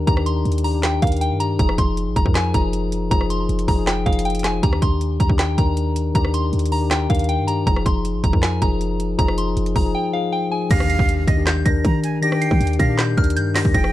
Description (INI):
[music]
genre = hip hop, trap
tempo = 158 BPM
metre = 4/4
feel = half-time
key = Eb major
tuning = A4 = 443 Hz
[part]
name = soft synth bell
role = melody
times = 0.0-13.9 s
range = F5 to C7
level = -25 LUFS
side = equal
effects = chorus, ping-pong delay
[part]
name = mellow tine electric piano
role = accompaniment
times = 0.0-13.9 s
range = Eb3 to Bb4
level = -23 LUFS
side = left 5 dB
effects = none
[part]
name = clean 808-style bass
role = bass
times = 0.0-13.9 s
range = F1 to Eb3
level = -21 LUFS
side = right 1 dB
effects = none
[part]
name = trap drum kit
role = drums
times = 0.1-13.9 s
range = crash cymbal, handclaps, hi-hat, kick drum, rim click, snare drum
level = -20 LUFS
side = right 1 dB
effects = none
[part]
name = breathy bright jazz flute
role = second line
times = 10.7-13.9 s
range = Eb5 to Bb5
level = -28 LUFS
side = right 5 dB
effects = ping-pong delay
[part]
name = impact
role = sound effects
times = 10.7-12.2 s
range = none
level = -28 LUFS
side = right 1 dB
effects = none
[sound]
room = little or no reverb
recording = dark, warm production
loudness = -17 LUFS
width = side -14 dB against mid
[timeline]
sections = 0.0-10.7 A section; 10.7-13.9 B section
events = break 9.9-10.7; impact 10.7-12.2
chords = 0.0 Ebmaj7; 1.6 Fm7; 4.6 Ebmaj7; 7.7 Fm7; 10.7 Ebmaj7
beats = | 0.07 0.45 0.83 1.21 | 1.59 1.97 2.35 2.73 | 3.11 3.49 3.87 4.25 | 4.63 5.01 5.39 5.77 | 6.15 6.53 6.91 7.29 | 7.67 8.05 8.43 8.81 | 9.19 9.57 9.95 10.33 | 10.71 11.09 11.47 11.85 | 12.22 12.61 12.98 13.37 | 13.74